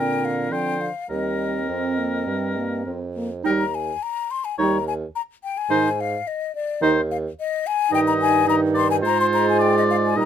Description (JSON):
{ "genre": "quick classical-period movement for wind quintet", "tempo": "106 BPM", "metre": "4/4", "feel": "rubato", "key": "Eb major", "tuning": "A4 = 443 Hz", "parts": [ { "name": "mellow hollow concert flute", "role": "melody", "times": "0.0-10.3 s", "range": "D5 to C6", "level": "-24 LUFS", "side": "left 8 dB", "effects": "none" }, { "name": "warm oboe", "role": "second line", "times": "0.0-10.3 s", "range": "Bb4 to Eb5", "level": "-26 LUFS", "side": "left 2 dB", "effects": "none" }, { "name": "warm French horn", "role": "accompaniment", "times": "0.0-10.3 s", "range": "D3 to C4", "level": "-26 LUFS", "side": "right 1 dB", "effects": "none" }, { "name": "warm clarinet", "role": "accompaniment", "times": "0.0-10.3 s", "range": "C4 to F4", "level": "-24 LUFS", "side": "right 7 dB", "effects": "none" }, { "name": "mellow bassoon", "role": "bass", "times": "0.0-10.3 s", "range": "Eb2 to D3", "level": "-26 LUFS", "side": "right 2 dB", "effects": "none" } ], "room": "little or no reverb", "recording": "close, detailed microphones", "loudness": "-20 LUFS", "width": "side -9 dB against mid", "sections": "0.0-3.4 A section; 3.4-10.3 B section", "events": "none", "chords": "0.0 Bb; 1.1 Eb; 5.7 Ab5; 7.9 Eb/G; 9.0 Fm/Ab" }